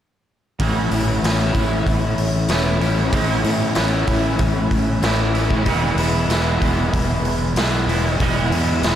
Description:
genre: rock, shoegaze and dream pop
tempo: 95 BPM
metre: 4/4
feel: straight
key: A major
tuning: A4 = 440 Hz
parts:
  - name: overdriven semi-hollow guitar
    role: riff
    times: 0.6-9.0 s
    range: A2 to E4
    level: -22 LUFS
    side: left 4 dB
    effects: lush chorus
  - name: twangy electric guitar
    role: riff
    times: 0.6-9.0 s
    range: E2 to E4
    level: -24 LUFS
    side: right 6 dB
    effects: reverse reverb
  - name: growling fingered electric bass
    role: bass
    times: 0.6-9.0 s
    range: E1 to A2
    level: -22 LUFS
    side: equal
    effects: overdrive
  - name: raw garage drum kit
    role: drums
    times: 0.6-9.0 s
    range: hi-hat, kick drum, snare drum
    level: -22 LUFS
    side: equal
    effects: none
room: wet huge ambient reverb, RT60 5.0 s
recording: dreamy mix soaked in reverb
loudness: -16 LUFS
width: side -10 dB against mid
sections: 0.6-9.0 A section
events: none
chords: 0.6 Aadd9; 5.7 E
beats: | 0.60 1.24 1.87 2.50 | 3.14 3.77 4.41 5.04 | 5.67 6.31 6.94 7.57 | 8.21 8.84

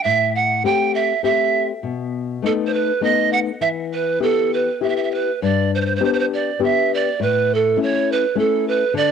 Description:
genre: italian folk, Italian serenade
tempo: 101 BPM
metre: 3/4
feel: rubato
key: unclear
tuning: A4 = 440 Hz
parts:
  - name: breathy pan flute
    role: melody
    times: 0.0-9.1 s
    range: A4 to G5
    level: -18 LUFS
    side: right 6 dB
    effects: cassette tape
  - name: nylon-string guitar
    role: accompaniment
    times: 0.1-9.1 s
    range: G2 to G4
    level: -21 LUFS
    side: left 9 dB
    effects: cassette tape
room: moderate spring reverb, RT60 2.1 s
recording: home recording on cassette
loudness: -17 LUFS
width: side -7 dB against mid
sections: 0.0-5.4 A section; 5.4-9.1 B section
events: none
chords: 0.1 Am7; 1.8 B7; 3.6 Em; 5.4 G; 7.2 A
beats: | 0.05 0.65 1.24 | 1.83 2.42 3.01 | 3.60 4.20 4.80 | 5.41 6.01 6.61 | 7.21 7.79 8.37 | 8.95

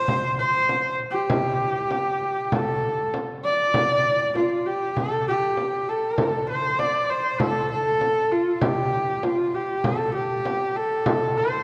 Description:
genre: mongolian traditional, Mongolian folk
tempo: 98 BPM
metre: 4/4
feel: straight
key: unclear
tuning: A4 = 440 Hz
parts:
  - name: clear horsehead fiddle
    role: melody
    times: 0.0-11.6 s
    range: F4 to D5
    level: -24 LUFS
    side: equal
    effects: none
  - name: frame drum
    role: percussion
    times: 0.1-11.4 s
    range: none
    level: -30 LUFS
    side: equal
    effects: none
room: wet concert hall reverb, RT60 2.2 s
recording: dark, warm production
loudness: -24 LUFS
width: mono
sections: 0.0-5.0 A section; 5.0-11.6 B section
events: none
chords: none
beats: | 0.08 0.69 1.30 1.91 | 2.52 3.13 3.74 4.35 | 4.96 5.57 6.18 6.79 | 7.41 8.02 8.62 9.23 | 9.84 10.45 11.06

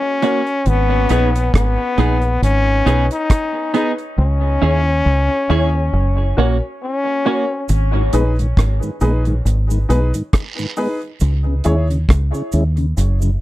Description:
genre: dub reggae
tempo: 68 BPM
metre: 4/4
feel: swing 57% on 16ths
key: G# minor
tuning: A4 = 441 Hz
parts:
  - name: brilliant trombone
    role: melody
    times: 0.0-7.7 s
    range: B3 to D#4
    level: -20 LUFS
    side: left 2 dB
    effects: tape echo
  - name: clean electric guitar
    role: accompaniment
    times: 0.2-7.4 s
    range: A#3 to G#4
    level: -24 LUFS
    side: right 6 dB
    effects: wide subtle chorus, tape echo
  - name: warm upright piano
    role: stabs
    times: 0.2-11.9 s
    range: D#4 to C#5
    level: -25 LUFS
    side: left 1 dB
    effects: tape echo
  - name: deep reggae drum kit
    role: drums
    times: 0.2-13.2 s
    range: hi-hat, kick drum, rim click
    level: -16 LUFS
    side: equal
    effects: none
  - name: deep dub fingered electric bass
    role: bass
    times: 0.7-13.4 s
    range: F#1 to D#2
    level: -16 LUFS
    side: equal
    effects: none
  - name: cabasa and guiro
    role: percussion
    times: 7.7-13.4 s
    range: none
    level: -33 LUFS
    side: right 6 dB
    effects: tape echo
  - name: mellow tonewheel organ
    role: accompaniment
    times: 7.9-13.3 s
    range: F#2 to E4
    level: -24 LUFS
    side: left 1 dB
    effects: overdrive, chorus vibrato, slow rotary speaker, tape echo
room: little or no reverb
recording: dry, close 1970s-style studio recording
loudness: -14 LUFS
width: side -16 dB against mid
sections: 0.0-13.4 A section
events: break 0.0-7.7; part muted 4.2-7.7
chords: 0.0 F#; 0.7 G#m; 4.2 C#m; 5.9 F#; 7.7 G#m; 11.2 C#m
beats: | 0.66 1.54 2.42 3.30 | 4.18 5.05 5.93 6.81 | 7.69 8.57 9.45 10.33 | 11.21 12.09 12.97

